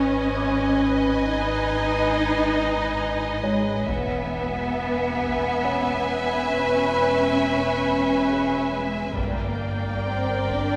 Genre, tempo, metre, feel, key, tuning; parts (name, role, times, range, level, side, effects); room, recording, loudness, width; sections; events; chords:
cinematic, suspense film score; 68 BPM; 3/4; straight; A4 = 439 Hz
warm symphonic violin section; melody; 0.0-10.8 s; G5 to G#5; -35 LUFS; equal
warm symphonic violin section; second line; 0.0-10.8 s; D5 to E5; -32 LUFS; equal
warm symphonic viola section; accompaniment; 0.0-10.8 s; Bb4 to B4; -30 LUFS; equal
rich studio double bass section; bass; 0.0-10.8 s; E1 to G#1; -32 LUFS; equal
warm symphonic cello section; bass; 0.0-10.8 s; G#3 to D#4; -27 LUFS; equal
dark baby grand piano; texture; 0.0-10.8 s; B3 to F#6; -38 LUFS; equal
rich symphonic violin section; texture; 0.0-3.4, 9.2-10.8 s; D6 to G#6; -39 LUFS; equal
taiko ensemble; drums; 3.9-10.8 s; -38 LUFS; equal
wet concert hall reverb, RT60 2.3 s; recorded in a church or concert hall; -23 LUFS; mono
0.0-10.8 A section
0.0 G#m; 3.9 E; 9.2 Gm